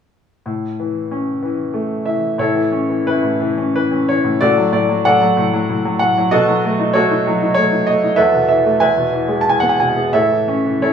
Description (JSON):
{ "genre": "classical, lyrical solo piano", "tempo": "86-98 BPM", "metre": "3/4", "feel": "rubato", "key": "A major", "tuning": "A4 = 437 Hz", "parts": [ { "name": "bright grand piano", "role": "solo", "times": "0.5-10.9 s", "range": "E2 to A5", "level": "-14 LUFS", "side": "equal", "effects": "none" } ], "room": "moderate studio reverb, RT60 0.5 s", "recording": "studio reverb", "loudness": "-14 LUFS", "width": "side -7 dB against mid", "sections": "0.5-2.4 A section; 2.4-10.9 B section", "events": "none", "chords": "0.5 A; 4.4 D/A; 6.3 B7; 8.2 Esus4; 8.8 E; 10.1 A", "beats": "| 0.45 1.12 1.74 | 2.39 3.07 3.75 | 4.42 5.05 5.69 | 6.32 6.95 7.57 | 8.18 8.81 9.46 | 10.13 10.81" }